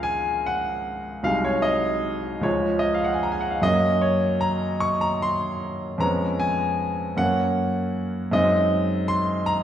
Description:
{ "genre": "classical, romantic character piece for solo piano", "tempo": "51 BPM (dotted quarters)", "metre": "6/8", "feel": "rubato", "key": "Db major", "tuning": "A4 = 440 Hz", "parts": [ { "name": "clear grand piano", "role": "solo", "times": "0.0-9.6 s", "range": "C2 to Db6", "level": "-21 LUFS", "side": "equal", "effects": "none" } ], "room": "wet scoring stage reverb, RT60 1.7 s", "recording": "heard from further back in the room", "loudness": "-21 LUFS", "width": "side -10 dB against mid", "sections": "0.0-9.6 A section", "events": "none", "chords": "0.0 Db; 1.3 Ab7/C; 2.5 Db; 3.6 Gb; 6.0 Db7/F; 7.2 Gb; 8.3 Ab7/Gb" }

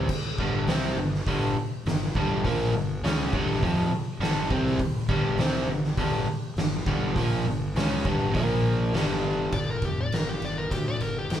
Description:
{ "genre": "blues rock power trio and southern rock", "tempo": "102 BPM", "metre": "4/4", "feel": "straight", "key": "G minor", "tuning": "A4 = 440 Hz", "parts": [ { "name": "biting overdriven guitar", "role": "riff", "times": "0.0-9.5 s", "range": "F2 to C#4", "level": "-27 LUFS", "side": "equal", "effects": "none" }, { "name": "oversized low-tuned drum kit", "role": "drums", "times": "0.1-11.4 s", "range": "crash cymbal, hi-hat, kick drum, ride cymbal, snare drum", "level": "-27 LUFS", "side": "equal", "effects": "none" }, { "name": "fuzz fingered electric bass", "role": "bass", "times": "0.4-11.4 s", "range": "F1 to D2", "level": "-32 LUFS", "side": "equal", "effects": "overdrive" }, { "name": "overdriven slide guitar", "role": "melody", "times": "9.5-11.4 s", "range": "G4 to D5", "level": "-31 LUFS", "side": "left 2 dB", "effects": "none" } ], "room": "moderate large studio reverb, RT60 1.0 s", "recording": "band playing live in one room", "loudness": "-24 LUFS", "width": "side -10 dB against mid", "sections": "0.1-9.5 A section; 9.5-11.4 B section", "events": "electric slide guitar solo 9.5-11.4", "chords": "0.1 Gm; 8.3 Bb5; 8.9 G5; 9.5 Gm" }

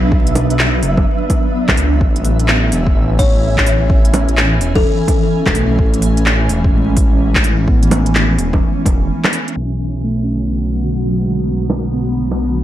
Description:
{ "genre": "future garage", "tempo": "127 BPM", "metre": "4/4", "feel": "swing 63% on 16ths", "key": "B dorian", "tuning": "A4 = 440 Hz", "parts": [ { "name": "tine electric piano", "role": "accompaniment", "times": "0.0-12.6 s", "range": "G#3 to D4", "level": "-22 LUFS", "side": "right 1 dB", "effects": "sidechain pumping, low-pass filter, ping-pong delay" }, { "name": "granular cloud pad", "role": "sustained chords", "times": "0.0-12.6 s", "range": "D3 to G#5", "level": "-21 LUFS", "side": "equal", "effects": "built-in reverb, sidechain pumping" }, { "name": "dark detuned saw bass", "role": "bass", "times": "0.0-12.6 s", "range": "E1 to C#2", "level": "-16 LUFS", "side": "equal", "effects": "tube saturation, sidechain pumping" }, { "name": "flickering grainy texture", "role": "texture", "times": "0.0-9.6 s", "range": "E5", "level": "-28 LUFS", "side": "right 2 dB", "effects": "built-in reverb" }, { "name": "electronic kick drum", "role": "drums", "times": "0.1-9.0 s", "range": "none", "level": "-15 LUFS", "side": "equal", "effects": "overdrive" }, { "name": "organic electronic drum kit", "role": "drums", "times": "0.3-12.4 s", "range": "bongos, handclaps, hi-hat", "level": "-18 LUFS", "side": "equal", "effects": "overdrive" }, { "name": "buzzing kalimba", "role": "melody", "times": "3.2-5.2 s", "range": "A4 to C#5", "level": "-22 LUFS", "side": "left 4 dB", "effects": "tape echo" } ], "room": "little or no reverb", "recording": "vinyl crackle, low-pass filter", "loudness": "-12 LUFS", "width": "side -12 dB against mid", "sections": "0.0-9.6 A section; 9.6-12.6 B section", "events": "filter sweep on tine electric piano 9.6-12.6; filter sweep 9.6-12.6", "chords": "0.0 Bm; 2.0 Amaj7; 9.6 Bm" }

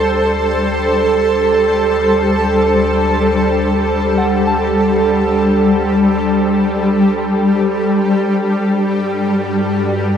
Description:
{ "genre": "ambient", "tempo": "free time", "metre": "none", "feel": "none", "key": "unclear", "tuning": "A4 = 440 Hz", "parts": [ { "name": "shimmering ambient pad", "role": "sustained chords", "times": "0.0-10.2 s", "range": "G3 to C5", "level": "-12 LUFS", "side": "equal", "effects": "chorus, built-in reverb, shimmer reverb" }, { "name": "soft synth bell", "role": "arpeggios", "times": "0.0-7.5 s", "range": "F#5 to A5", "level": "-26 LUFS", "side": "equal", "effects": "chorus, tape echo, shimmer reverb" }, { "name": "deep rumbling drone", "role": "bass", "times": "0.0-10.2 s", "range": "D2 to G2", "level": "-25 LUFS", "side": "equal", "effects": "built-in reverb" } ], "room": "wet cathedral reverb, RT60 6.0 s", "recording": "in a vast, echoing space", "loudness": "-12 LUFS", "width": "side -8 dB against mid", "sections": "0.0-10.2 A section", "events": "fade-in on synth drone 0.0-10.2", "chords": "0.0 D7sus4; 7.5 Gmaj7" }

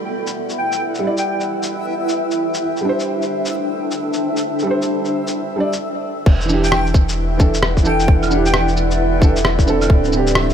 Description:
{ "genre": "future garage", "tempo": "132 BPM", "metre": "4/4", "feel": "swing 63% on 16ths", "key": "E minor", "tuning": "A4 = 441 Hz", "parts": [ { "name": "felt-muted upright piano", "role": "accompaniment", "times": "0.0-10.5 s", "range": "D3 to D5", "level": "-21 LUFS", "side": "right 3 dB", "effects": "sidechain pumping, digital delay" }, { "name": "granular cloud pad", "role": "sustained chords", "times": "0.0-10.5 s", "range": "B3 to B5", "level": "-22 LUFS", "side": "equal", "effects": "built-in reverb, sidechain pumping" }, { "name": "backwards swelling texture", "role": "texture", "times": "0.1-10.5 s", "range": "E5", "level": "-28 LUFS", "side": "left 3 dB", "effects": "built-in reverb" }, { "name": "lo-fi sampler-style drum kit", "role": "drums", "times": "0.3-10.5 s", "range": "cabasa, claves, crash cymbal, rim click, shaker", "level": "-23 LUFS", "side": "equal", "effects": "small room ambience" }, { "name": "airy dreamy lead", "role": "melody", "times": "0.6-1.4, 6.6-8.6 s", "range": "G5", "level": "-26 LUFS", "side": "left 1 dB", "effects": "chorus, tape echo" }, { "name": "soft dub sub bass", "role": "bass", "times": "6.3-10.5 s", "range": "D1 to E1", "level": "-20 LUFS", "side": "equal", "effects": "sidechain pumping" }, { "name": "electronic kick drum", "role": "drums", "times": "6.3-10.0 s", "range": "none", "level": "-12 LUFS", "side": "equal", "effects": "overdrive, small room ambience" } ], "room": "light reverb", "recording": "none", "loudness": "-15 LUFS", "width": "side -8 dB against mid", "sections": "0.0-6.3 A section; 6.3-10.5 B section", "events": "break 5.8-6.3", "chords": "0.0 Em7; 2.6 D7sus4; 6.3 Em7; 9.9 D7sus4" }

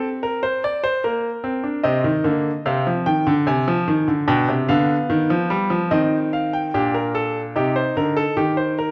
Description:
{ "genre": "classical, baroque-style 3-part fugue for grand piano", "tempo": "74 BPM", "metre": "3/4", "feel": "straight", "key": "C minor", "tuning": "A4 = 439 Hz", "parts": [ { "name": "bright concert grand piano", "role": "solo", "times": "0.0-8.9 s", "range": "Bb2 to Ab5", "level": "-20 LUFS", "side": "equal", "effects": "none" } ], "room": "moderate recital hall reverb, RT60 1.5 s", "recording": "close, detailed microphones", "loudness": "-20 LUFS", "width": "mono", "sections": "0.0-8.9 A section", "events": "none", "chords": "0.0 D7(no3); 1.0 Bbadd9; 1.8 Cm; 3.5 Dm7b5/C; 4.3 G7/B; 5.9 Cm/Eb; 6.7 Gm/Bb; 8.4 Am7b5/Eb (rootless)" }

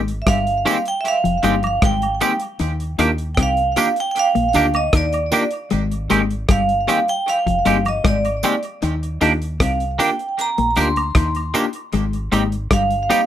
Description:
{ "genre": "lovers rock reggae", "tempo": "77 BPM", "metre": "4/4", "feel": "straight", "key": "Eb major", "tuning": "A4 = 440 Hz", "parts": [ { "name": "mellow electric guitar", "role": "riff", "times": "0.0-12.9 s", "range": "F3 to Eb4", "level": "-24 LUFS", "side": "left 6 dB", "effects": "spring reverb, tape echo" }, { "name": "deep dub fingered electric bass", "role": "bass", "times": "0.0-13.1 s", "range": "F1 to Eb2", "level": "-23 LUFS", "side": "equal", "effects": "none" }, { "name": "damped 70s drum kit", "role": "drums", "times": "0.1-13.3 s", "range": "hi-hat, kick drum, rim click", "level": "-21 LUFS", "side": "equal", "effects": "tape echo" }, { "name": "vibraphone with hard mallets", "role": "melody", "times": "0.2-13.3 s", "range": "D5 to C6", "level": "-20 LUFS", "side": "right 3 dB", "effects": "tape echo" }, { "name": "mellow tine electric piano", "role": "accompaniment", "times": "0.6-13.2 s", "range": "Bb3 to G4", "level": "-24 LUFS", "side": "left 4 dB", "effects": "medium stereo tremolo" }, { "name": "twangy electric guitar", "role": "stabs", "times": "0.7-13.2 s", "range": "Eb3 to G4", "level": "-21 LUFS", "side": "right 2 dB", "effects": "analog chorus, tape echo" }, { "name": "tambourine and woodblock", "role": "percussion", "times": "0.7-13.3 s", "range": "none", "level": "-30 LUFS", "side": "right 5 dB", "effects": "tape echo" } ], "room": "light reverb", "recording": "rough home demo mix", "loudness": "-16 LUFS", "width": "side -11 dB against mid", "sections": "0.0-13.3 A section", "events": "none", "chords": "0.0 Abmaj7; 2.6 Ebmaj7; 5.7 Abmaj7; 8.8 Ebmaj7; 11.9 Abmaj7" }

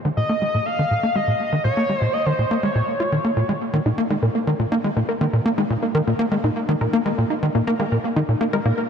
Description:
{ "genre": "ambient, sequencer-driven space music", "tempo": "122 BPM", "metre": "4/4", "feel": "straight", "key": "Bb minor", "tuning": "A4 = 440 Hz", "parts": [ { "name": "tight sequencer bass", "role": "riff", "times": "0.0-8.7 s", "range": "Bb2 to F4", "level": "-20 LUFS", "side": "equal", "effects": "lush chorus, tape echo" }, { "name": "pulse-width lead", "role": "melody", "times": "0.2-3.1 s", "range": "C5 to F5", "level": "-23 LUFS", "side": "left 1 dB", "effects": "chorus, tape echo" }, { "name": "wide unison pluck", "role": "arpeggios", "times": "3.7-8.7 s", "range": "Bb3 to Bb4", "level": "-24 LUFS", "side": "left 1 dB", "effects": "auto-pan, tape echo" } ], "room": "wet lush hall reverb, RT60 2.6 s", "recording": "dreamy mix soaked in reverb", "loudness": "-18 LUFS", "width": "side -7 dB against mid", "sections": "0.0-8.9 A section", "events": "none", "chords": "none" }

